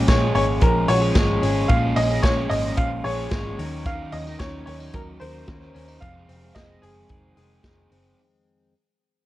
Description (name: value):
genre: jangly indie pop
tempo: 111 BPM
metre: 4/4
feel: straight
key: Bb minor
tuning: A4 = 438 Hz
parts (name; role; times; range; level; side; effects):
- raw garage guitar; accompaniment; 0.0-8.2 s; F2 to Bb4; -29 LUFS; right 3 dB; overdrive
- direct-recorded clean electric guitar; arpeggios; 0.0-8.7 s; F2 to Bb4; -28 LUFS; left 3 dB; none
- vintage muted picked electric bass; bass; 0.0-8.1 s; F1 to Eb2; -26 LUFS; equal; none
- bright upright piano; melody; 0.1-7.9 s; Ab4 to F5; -26 LUFS; right 1 dB; none
- vintage drum kit; drums; 0.1-8.0 s; hi-hat, kick drum, snare drum; -23 LUFS; equal; none
room: light reverb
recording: worn, warbling old tape, cassette tape, warbly pitch drift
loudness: -19 LUFS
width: side -16 dB against mid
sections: 0.0-8.2 A section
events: fade-out 0.0-8.2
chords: 0.0 Bbm7; 3.6 Ebm7; 6.0 Fm7